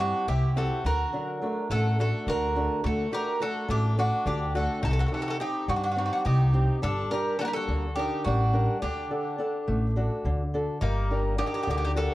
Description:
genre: greek folk, Greek bouzouki band.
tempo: 211 BPM (eighths).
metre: 7/8.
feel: straight.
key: G harmonic minor.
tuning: A4 = 440 Hz.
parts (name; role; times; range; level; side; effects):
Greek bouzouki; melody; 0.0-12.1 s; Eb4 to Bb4; -30 LUFS; right 1 dB; analog delay.
Greek bouzouki; second line; 0.0-12.1 s; Bb3 to G4; -36 LUFS; left 2 dB; none.
fingerpicked acoustic archtop guitar; accompaniment; 0.0-12.1 s; C3 to F#5; -31 LUFS; equal; none.
upright bass; bass; 0.0-12.1 s; G1 to G2; -26 LUFS; equal; none.
room: light reverb.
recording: worn, warbling old tape, cassette tape, warbly pitch drift.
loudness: -24 LUFS.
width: side -16 dB against mid.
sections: 0.0-10.8 A section; 10.8-12.1 B section.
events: none.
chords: 0.0 C; 0.8 D; 4.8 Cm; 6.8 Gm; 8.8 D; 10.8 Gm.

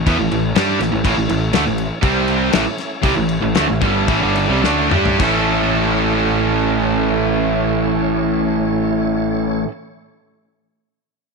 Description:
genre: classic rock.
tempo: 104-123 BPM.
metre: 4/4.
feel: straight.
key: A mixolydian.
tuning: A4 = 439 Hz.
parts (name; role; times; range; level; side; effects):
tonewheel organ; sustained chords; 0.0-9.6 s; A3 to C#5; -28 LUFS; equal; slow rotary speaker, overdrive, chorus vibrato.
fuzz fingered electric bass; bass; 0.0-9.6 s; G1 to G2; -23 LUFS; equal; overdrive.
cranked stack guitar; riff; 0.1-9.7 s; G2 to A4; -19 LUFS; right 14 dB; overdrive.
overdriven electric guitar; riff; 0.1-9.7 s; G2 to A4; -20 LUFS; left 13 dB; none.
damped 70s drum kit; drums; 0.1-5.3 s; crash cymbal, kick drum, snare drum, toms; -21 LUFS; left 4 dB; none.
room: light reverb.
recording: 1960s-style stereo with parts hard left and right.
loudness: -15 LUFS.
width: side -4 dB against mid.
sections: 0.0-5.2 A section; 5.2-9.8 B section.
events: slowing down 1.0-5.2; drum fill 4.6-5.2.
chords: 0.0 A; 2.0 C5; 2.5 A.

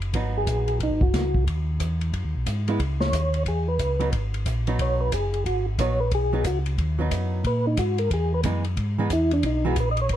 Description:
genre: soul jazz organ trio.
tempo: 181 BPM.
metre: 4/4.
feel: swing 63% on 8ths.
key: G# minor.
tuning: A4 = 435 Hz.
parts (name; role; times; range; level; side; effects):
mellow tonewheel organ; bass; 0.0-10.2 s; F#1 to A#2; -25 LUFS; equal; slow rotary speaker.
open jazz drum kit; drums; 0.0-10.2 s; hi-hat, kick drum, ride cymbal, snare drum; -29 LUFS; equal; none.
archtop guitar, miked and amplified; accompaniment; 0.1-9.8 s; E3 to E4; -29 LUFS; right 4 dB; none.
percussive tonewheel organ; melody; 0.4-10.2 s; D4 to D#5; -26 LUFS; equal; chorus vibrato, slow rotary speaker, plate reverb.
room: light reverb.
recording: dark, warm production.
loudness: -22 LUFS.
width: side -11 dB against mid.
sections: 0.0-10.2 A section.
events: tonewheel organ solo 0.0-10.2.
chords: 0.1 G#m7; 2.8 C#m7; 4.1 G#m7; 8.1 Emaj7.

